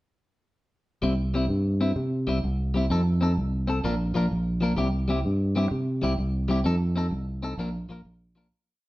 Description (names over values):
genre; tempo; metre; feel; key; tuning
highlife guitar band; 128 BPM (dotted quarters); 12/8; straight; C mixolydian; A4 = 440 Hz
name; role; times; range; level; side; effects
clean electric guitar; accompaniment; 1.0-8.5 s; F3 to Bb4; -28 LUFS; left 2 dB; none
fingered electric bass; bass; 1.0-8.5 s; Bb1 to C3; -25 LUFS; equal; none
room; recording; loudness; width
wet stone room reverb, RT60 1.0 s; band playing live in one room; -23 LUFS; side -18 dB against mid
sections
1.0-8.5 A section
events
fade-out 6.7-8.5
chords
1.0 C; 2.9 F7; 3.8 Bb; 4.8 C; 6.7 F7; 7.6 Bb